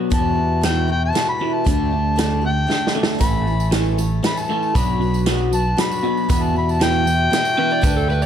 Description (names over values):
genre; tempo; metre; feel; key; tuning
folk rock and heartland rock; 117 BPM; 3/4; straight; E dorian; A4 = 436 Hz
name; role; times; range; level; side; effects
picked twelve-string acoustic guitar; accompaniment; 0.0-8.3 s; E2 to A4; -27 LUFS; left 8 dB; none
electric guitar through a small old amp; riff; 0.0-8.3 s; E2 to D4; -23 LUFS; right 2 dB; phaser
mellow harmonica; melody; 0.1-8.3 s; G5 to B5; -22 LUFS; left 1 dB; analog delay
fingered electric bass; bass; 0.1-8.3 s; A1 to E2; -21 LUFS; equal; none
vintage drum kit; drums; 0.1-8.0 s; hi-hat, kick drum, snare drum; -22 LUFS; right 1 dB; none
tambourine; percussion; 3.2-8.3 s; none; -38 LUFS; right 12 dB; none
overdriven slide guitar; second line; 7.6-8.3 s; A4 to D5; -25 LUFS; right 7 dB; none
room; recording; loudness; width
small room ambience; none; -16 LUFS; side -9 dB against mid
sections
0.0-8.3 A section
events
harmonica solo 0.0-8.3; drum fill 2.7-3.2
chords
0.1 Emadd9; 1.7 Dsus4; 3.2 A; 4.8 Bm; 6.3 Emadd9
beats
| 0.12 0.64 1.15 | 1.67 2.18 2.70 | 3.21 3.73 4.24 | 4.75 5.27 5.78 | 6.29 6.80 7.32 | 7.83